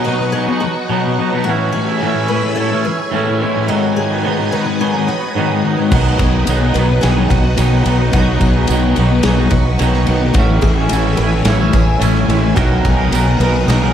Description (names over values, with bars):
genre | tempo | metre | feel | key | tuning
rock, shoegaze and dream pop | 108 BPM | 4/4 | straight | B major | A4 = 440 Hz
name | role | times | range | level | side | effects
phased string machine | sustained chords | 0.0-13.9 s | B4 to E6 | -26 LUFS | right 1 dB | ensemble chorus, phaser
picked twelve-string acoustic guitar | arpeggios | 0.0-13.9 s | F#4 to B4 | -24 LUFS | left 2 dB | analog chorus, diffuse ambient delay
fuzz guitar | riff | 0.0-13.9 s | G#2 to B3 | -18 LUFS | left 6 dB | distortion, lush chorus
twangy electric guitar | riff | 0.0-13.9 s | G#2 to A#4 | -19 LUFS | right 7 dB | reverse reverb
fuzz fingered electric bass | bass | 5.9-13.9 s | A1 to B1 | -15 LUFS | equal | overdrive
big rock drum kit | drums | 5.9-13.8 s | crash cymbal, kick drum, ride cymbal, snare drum | -19 LUFS | equal | none
tambourine | percussion | 6.5-13.3 s | none | -33 LUFS | right 9 dB | none
room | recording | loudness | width
moderate plate reverb, RT60 1.6 s, small room ambience | dreamy mix soaked in reverb | -12 LUFS | side -9 dB against mid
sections
0.0-13.9 A section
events
none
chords
0.0 B; 1.5 Amaj7; 3.7 G#m7; 5.9 B; 10.4 Amaj7; 12.6 Bmaj7